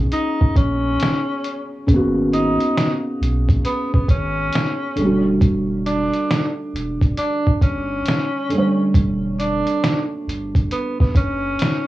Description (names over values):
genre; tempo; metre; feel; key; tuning
lo-fi hip hop; 68 BPM; 4/4; swing 64% on 16ths; unclear; A4 = 441 Hz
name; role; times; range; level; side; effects
felt-muted upright piano; accompaniment; 0.0-11.9 s; C#3 to C#5; -22 LUFS; equal; cassette tape, low-pass filter
warm sub bass; bass; 0.0-11.6 s; E1 to B1; -24 LUFS; equal; none
breathy tenor saxophone; melody; 0.1-11.9 s; B3 to D#4; -23 LUFS; right 1 dB; low-pass filter, plate reverb
lo-fi sampler-style drum kit; drums; 0.1-11.9 s; hi-hat, kick drum, snare drum; -18 LUFS; equal; none
room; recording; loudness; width
moderate studio reverb, RT60 0.6 s; worn, warbling old tape, cassette tape, warbly pitch drift, small room ambience; -17 LUFS; side -16 dB against mid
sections
0.0-11.9 A section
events
none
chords
0.0 G#m11; 5.0 Em11